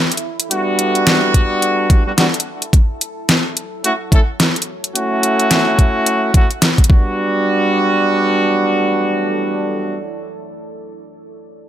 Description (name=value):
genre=glitch hop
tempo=108 BPM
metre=4/4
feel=swing 59% on 16ths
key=E dorian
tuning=A4 = 441 Hz
part: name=deep dark ambient pad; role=texture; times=0.0-10.2 s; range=F#3 to D5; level=-29 LUFS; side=right 1 dB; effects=chorus, built-in reverb, sidechain pumping
part: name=pop drum kit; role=drums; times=0.1-6.9 s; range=hi-hat, snare drum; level=-15 LUFS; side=equal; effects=overdrive
part: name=clear horn section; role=stabs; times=0.5-10.0 s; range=G3 to A4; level=-16 LUFS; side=right 1 dB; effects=sidechain pumping, digital delay
part: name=electronic kick drum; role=drums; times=1.3-7.0 s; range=none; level=-11 LUFS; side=equal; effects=overdrive
room=light reverb, digital ambience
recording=none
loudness=-13 LUFS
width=side -11 dB against mid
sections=0.0-7.2 A section; 7.2-9.4 B section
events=fade-out on ambient pad 0.0-7.2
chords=0.0 Em7; 2.7 F#m7; 6.9 Em7